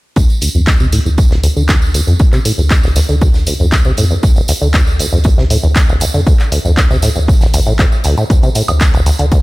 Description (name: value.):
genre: acid house.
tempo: 118 BPM.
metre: 4/4.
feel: straight.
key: D minor.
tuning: A4 = 440 Hz.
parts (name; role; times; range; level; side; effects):
deep acid bass; riff; 0.2-9.4 s; D1 to D3; -16 LUFS; equal; none.
round analog bass; bass; 0.2-9.4 s; A1 to F2; -14 LUFS; equal; sidechain pumping.
big rock drum kit; drums; 0.2-9.4 s; hi-hat, snare drum; -31 LUFS; right 2 dB; none.
electronic kick drum; drums; 0.2-9.4 s; none; -11 LUFS; equal; none.
tambourine; percussion; 0.2-9.4 s; none; -24 LUFS; right 4 dB; none.
punchy analog drum machine; drums; 0.4-9.4 s; handclaps, hi-hat, woodblock; -20 LUFS; equal; none.
room: studio ambience.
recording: none.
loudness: -9 LUFS.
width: side -21 dB against mid.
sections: 0.2-9.4 A section.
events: filter sweep on acid bass 0.2-9.4.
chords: 0.2 D5.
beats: | 0.16 0.67 1.18 1.69 | 2.20 2.71 3.21 3.72 | 4.23 4.74 5.25 5.76 | 6.27 6.78 7.28 7.79 | 8.30 8.81 9.32.